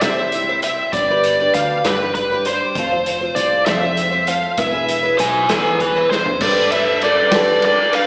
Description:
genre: folk rock and heartland rock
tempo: 66 BPM (dotted quarters)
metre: 6/8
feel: straight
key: unclear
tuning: A4 = 440 Hz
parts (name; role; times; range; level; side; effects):
- biting lead guitar; melody; 0.0-8.1 s; A4 to G#5; -20 LUFS; equal; overdrive, slapback echo
- picked twelve-string acoustic guitar; accompaniment; 0.0-8.1 s; C3 to C5; -23 LUFS; equal; slapback echo
- woody fretless electric bass; bass; 0.0-7.6 s; E1 to G3; -29 LUFS; equal; analog chorus
- vintage drum kit; drums; 0.0-8.1 s; crash cymbal, hi-hat, kick drum, ride cymbal, snare drum, toms; -25 LUFS; equal; none
room: light reverb, small room ambience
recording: live gig heard through the venue's PA, recital hall reverb, small speaker sound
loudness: -17 LUFS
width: mono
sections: 0.0-6.4 A section; 6.4-8.1 B section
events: drum fill 6.1-6.4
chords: 0.0 C; 0.9 G; 2.8 F; 4.6 E; 6.4 Gadd9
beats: 0.01 | 0.93 1.84 | 2.76 3.67 | 4.59 5.50 | 6.42 7.33

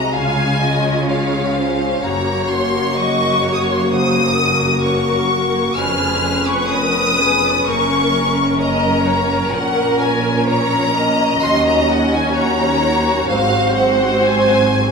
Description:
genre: classical, slow romantic movement for symphony orchestra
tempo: 64 BPM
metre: 4/4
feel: rubato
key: Db major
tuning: A4 = 443 Hz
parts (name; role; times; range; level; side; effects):
- warm symphonic violin section; melody; 0.0-14.9 s; F5 to F6; -19 LUFS; left 2 dB; none
- dark symphonic violin section; second line; 0.0-14.9 s; Ab4 to F5; -20 LUFS; equal; none
- warm symphonic viola section; accompaniment; 0.0-14.9 s; Ab3 to Cb5; -22 LUFS; right 1 dB; none
- mellow French horn section; sustained chords; 0.0-14.9 s; F3 to Gb4; -23 LUFS; left 1 dB; none
- concert harp; arpeggios; 0.0-14.9 s; F2 to Gb5; -24 LUFS; left 4 dB; none
- rich symphonic double bass section; bass; 0.0-14.9 s; F1 to Eb2; -26 LUFS; right 3 dB; none
- warm symphonic cello section; bass; 0.0-14.9 s; Eb2 to Db3; -24 LUFS; right 4 dB; none
room: wet recital hall reverb, RT60 1.5 s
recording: minimal, uncompressed stereo recording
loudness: -14 LUFS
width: side -5 dB against mid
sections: 0.0-14.9 A section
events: none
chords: 0.2 Db; 2.0 Gb; 5.8 Db7/F; 7.7 Gb; 9.5 Bbm; 11.4 Ebm7; 13.3 Ab7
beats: 0.15 1.09 | 2.03 2.97 3.91 4.85 | 5.78 6.72 7.68 8.60 | 9.53 10.47 11.42 12.36 | 13.29 14.25

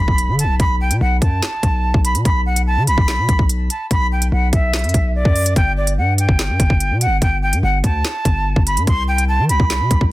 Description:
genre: hip hop, drill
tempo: 145 BPM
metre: 4/4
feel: half-time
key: B phrygian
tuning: A4 = 440 Hz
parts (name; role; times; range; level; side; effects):
- jazz flute; melody; 0.0-10.0 s; D5 to C6; -20 LUFS; right 1 dB; digital delay
- distorted 808-style bass; bass; 0.0-10.1 s; G1 to E3; -18 LUFS; equal; distortion
- impact; sound effects; 0.0-0.6 s; none; -36 LUFS; equal; none
- drill drum kit; drums; 0.1-10.1 s; handclaps, hi-hat, kick drum, snare drum; -17 LUFS; equal; none
room: little or no reverb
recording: dense, heavily limited modern master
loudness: -14 LUFS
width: side -17 dB against mid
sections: 0.0-10.1 A section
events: impact 0.0-0.6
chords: 0.0 B7(no3); 5.6 N.C.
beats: 0.18 | 0.60 1.01 1.43 1.84 | 2.25 2.67 3.08 3.49 | 3.91 4.32 4.74 5.15 | 5.56 5.98 6.39 6.80 | 7.22 7.63 8.04 8.46 | 8.87 9.29 9.70 10.11

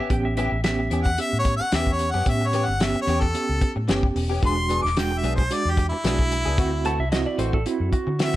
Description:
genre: straight-eighth soul blues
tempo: 111 BPM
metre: 4/4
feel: swing 54% on 16ths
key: A mixolydian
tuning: A4 = 440 Hz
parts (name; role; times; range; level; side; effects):
- clean lap steel guitar; second line; 0.0-0.9, 6.9-8.2 s; E4 to A5; -29 LUFS; right 3 dB; plate reverb, analog delay
- direct-recorded clean electric guitar; stabs; 0.0-8.4 s; E3 to G#4; -32 LUFS; left 5 dB; ensemble chorus, plate reverb, analog delay
- mellow reed electric piano; accompaniment; 0.1-8.4 s; G#3 to G4; -28 LUFS; right 4 dB; fast tremolo, plate reverb
- vintage muted fingered electric bass; bass; 0.1-8.4 s; E1 to D3; -26 LUFS; equal; none
- warm soul drum kit; drums; 0.1-8.4 s; hi-hat, kick drum, snare drum; -24 LUFS; equal; none
- bright harmonica; melody; 1.0-8.4 s; E4 to D6; -25 LUFS; left 1 dB; plate reverb
room: light reverb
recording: none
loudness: -20 LUFS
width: side -15 dB against mid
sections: 0.0-8.4 A section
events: none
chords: 0.0 A9; 4.4 E9; 6.6 D9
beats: | 0.10 0.64 1.18 1.72 | 2.26 2.80 3.34 3.88 | 4.42 4.96 5.50 6.04 | 6.58 7.12 7.66 8.20

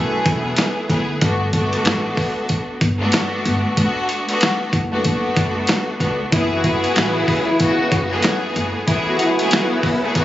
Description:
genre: hip hop, boom-bap hip-hop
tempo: 94 BPM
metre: 4/4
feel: swing 61% on 16ths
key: F# minor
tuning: A4 = 440 Hz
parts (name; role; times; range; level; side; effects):
- mellow electric guitar; melody; 0.0-0.1, 6.3-10.2 s; E3 to A4; -23 LUFS; equal; lush chorus, high-pass filter, low-pass filter, digital delay
- bright studio string section; accompaniment; 0.0-10.2 s; F#2 to G#4; -20 LUFS; equal; high-pass filter, low-pass filter
- upright bass; bass; 0.0-8.7 s; E1 to D2; -24 LUFS; equal; none
- dusty soul sampler-style drum kit; drums; 0.3-10.2 s; hi-hat, kick drum, snare drum; -20 LUFS; equal; none
- finger snap; percussion; 0.6-8.4 s; none; -28 LUFS; right 1 dB; none
- warm studio string section; stabs; 6.5-10.2 s; C#3 to F#4; -21 LUFS; left 1 dB; high-pass filter, low-pass filter, digital delay
room: light reverb, studio ambience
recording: recorded on a phone in the room, studio reverb, nothing above 7.7 kHz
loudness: -16 LUFS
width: side -13 dB against mid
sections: 0.0-10.2 A section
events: none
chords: 0.0 F#m11; 1.2 Gmaj9; 6.3 F#m11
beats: 0.58 | 1.22 1.85 2.49 3.13 | 3.77 4.41 5.05 5.68 | 6.32 6.96 7.60 8.24 | 8.88 9.52 10.15

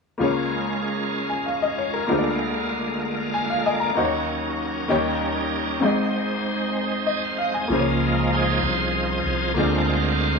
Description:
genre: gospel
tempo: 64 BPM (dotted quarters)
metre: 6/8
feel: straight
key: Db major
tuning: A4 = 440 Hz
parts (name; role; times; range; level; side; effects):
- bright upright piano; accompaniment; 0.2-10.4 s; Ab1 to Bb5; -24 LUFS; left 2 dB; none
- bright tonewheel organ; sustained chords; 0.2-10.4 s; D3 to Ab5; -24 LUFS; right 2 dB; slow rotary speaker, chorus vibrato
- fingered electric bass; bass; 7.7-10.4 s; C2 to D2; -24 LUFS; right 2 dB; none
room: moderate studio reverb, RT60 0.6 s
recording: band playing live in one room, small room ambience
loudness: -21 LUFS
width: side -4 dB against mid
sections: 0.2-7.7 A section; 7.7-10.4 B section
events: upright piano fill 3.0-4.0; tonewheel organ fill 3.0-4.0, 6.8-7.7; tonewheel organ solo 7.7-10.4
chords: 0.2 Db6; 2.1 Bb7/D; 4.0 Ebm7; 4.9 Eb7; 5.8 Ab; 7.7 Db6; 9.6 Bb7/D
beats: | 0.21 1.15 | 2.08 3.02 | 3.96 4.89 | 5.83 6.76 | 7.70 8.63 | 9.56

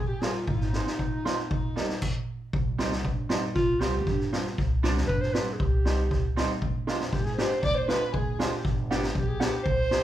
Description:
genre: klezmer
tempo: 118 BPM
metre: 2/4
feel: straight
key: C harmonic minor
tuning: A4 = 440 Hz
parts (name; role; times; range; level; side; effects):
- dark clarinet; melody; 0.0-10.0 s; Eb4 to D5; -30 LUFS; right 1 dB; none
- dark violin; second line; 0.0-2.0, 7.1-10.0 s; Eb4 to D5; -35 LUFS; left 3 dB; none
- upright bass; bass; 0.0-10.0 s; G1 to Ab2; -31 LUFS; equal; none
- clear upright piano; accompaniment; 0.2-10.0 s; G3 to G4; -32 LUFS; right 2 dB; none
- street-band drum kit; drums; 0.2-10.0 s; crash cymbal, kick drum, snare drum; -28 LUFS; equal; none
room: light reverb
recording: band playing live in one room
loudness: -25 LUFS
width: side -12 dB against mid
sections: 0.0-2.5 A section; 2.5-10.0 B section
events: stop 2.0-2.5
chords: 0.5 Ab; 1.5 Eb; 2.0 N.C.; 2.5 Cm; 6.6 Ddim; 8.6 G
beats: | 0.47 0.99 | 1.51 2.02 | 2.54 3.05 | 3.56 4.07 | 4.58 5.09 | 5.60 6.11 | 6.62 7.12 | 7.63 8.14 | 8.65 9.15 | 9.66

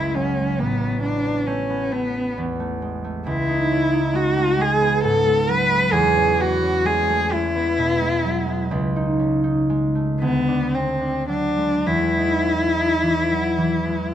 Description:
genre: classical, impressionist duo for cello and harp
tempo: 34-46 BPM (dotted quarters)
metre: 6/8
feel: rubato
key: E major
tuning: A4 = 442 Hz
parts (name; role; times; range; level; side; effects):
- warm cello; melody; 0.0-14.1 s; B3 to B4; -20 LUFS; left 1 dB; none
- concert harp; accompaniment; 0.0-14.1 s; F#1 to D#4; -22 LUFS; right 1 dB; none
room: moderate recital hall reverb, RT60 1.4 s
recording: none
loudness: -18 LUFS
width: side -10 dB against mid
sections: 0.0-14.1 A section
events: none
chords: 0.0 F#7sus2; 0.6 Aadd9; 3.3 C#m11; 5.9 E69; 8.7 C#sus2; 10.2 D7; 11.9 Emaj7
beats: | 0.59 1.92 | 3.26 4.59 | 5.93 7.32 | 8.71 10.22 | 11.87 13.57

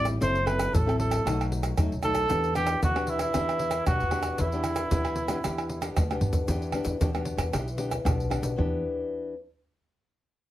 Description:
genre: samba and choro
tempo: 115 BPM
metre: 4/4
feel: straight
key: E minor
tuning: A4 = 440 Hz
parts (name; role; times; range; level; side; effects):
- breathy trumpet; melody; 0.0-6.0 s; E4 to C5; -28 LUFS; right 2 dB; none
- nylon-string guitar; accompaniment; 0.0-9.3 s; F#2 to A4; -31 LUFS; left 3 dB; none
- upright bass; bass; 0.0-8.8 s; F#1 to F#2; -31 LUFS; equal; none
- tube shaker, pandeiro, tamborim and surdo; percussion; 0.1-8.7 s; none; -29 LUFS; right 1 dB; none
room: moderate studio reverb, RT60 0.5 s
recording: none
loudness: -25 LUFS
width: side -14 dB against mid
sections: 0.0-6.5 A section; 6.5-8.6 B section; 8.6-10.5 C section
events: drum fill 6.1-6.5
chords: 0.2 F#m7b5; 1.3 B7; 2.3 Em7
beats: | 0.21 0.73 1.25 1.78 | 2.30 2.82 3.35 3.87 | 4.39 4.91 5.44 5.96 | 6.48 7.00 7.53 8.05 | 8.57 9.09

